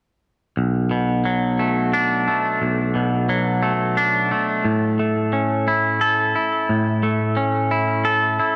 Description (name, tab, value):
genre	rock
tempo	88 BPM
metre	3/4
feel	straight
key	B minor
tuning	A4 = 436 Hz
part	twangy electric guitar	arpeggios	0.6-8.6 s	B1 to A4	-20 LUFS	equal	analog delay
room	moderate lush hall reverb, RT60 2.1 s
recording	none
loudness	-20 LUFS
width	mono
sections	0.6-8.6 A section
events	none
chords	0.6 Bm7; 4.7 A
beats	| 0.58 1.26 1.94 | 2.62 3.30 3.98 | 4.66 5.33 6.01 | 6.69 7.37 8.04